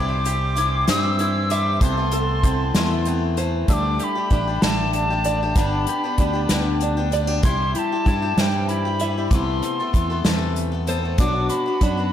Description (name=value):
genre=indie folk with a building arrangement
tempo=64 BPM (dotted quarters)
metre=6/8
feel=straight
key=D mixolydian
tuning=A4 = 443 Hz
part: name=breathy mellow tin whistle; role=melody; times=0.0-12.1 s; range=G5 to E6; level=-25 LUFS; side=left 1 dB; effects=ping-pong delay
part: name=picked swing-style acoustic guitar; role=accompaniment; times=0.0-12.1 s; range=G2 to A4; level=-27 LUFS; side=left 5 dB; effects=none
part: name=warm brass ensemble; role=sustained chords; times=0.0-3.7 s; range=G4 to C6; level=-32 LUFS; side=right 1 dB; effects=none
part: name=open-back banjo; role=arpeggios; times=0.0-12.1 s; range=C4 to E5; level=-29 LUFS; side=right 3 dB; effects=none
part: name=fingered electric bass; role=bass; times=0.0-12.1 s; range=G1 to G2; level=-24 LUFS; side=equal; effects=none
part: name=unplugged drum kit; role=drums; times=0.3-12.0 s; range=hi-hat, kick drum, snare drum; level=-22 LUFS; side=equal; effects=none
part: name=fingerpicked steel-string acoustic guitar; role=accompaniment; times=3.7-12.1 s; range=D2 to G4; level=-30 LUFS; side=left 2 dB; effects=none
room=moderate lush hall reverb, RT60 1.5 s, small room ambience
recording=dreamy mix soaked in reverb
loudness=-18 LUFS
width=side -10 dB against mid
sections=0.0-3.7 A section; 3.7-12.1 B section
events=none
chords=0.0 C; 1.8 Amadd9/C; 3.7 Dsus4; 5.6 G; 7.4 C; 9.3 Amadd9/C; 11.2 Bm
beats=0.88 | 1.81 2.75 | 3.69 4.62 | 5.56 6.50 | 7.44 8.38 | 9.31 10.25 | 11.19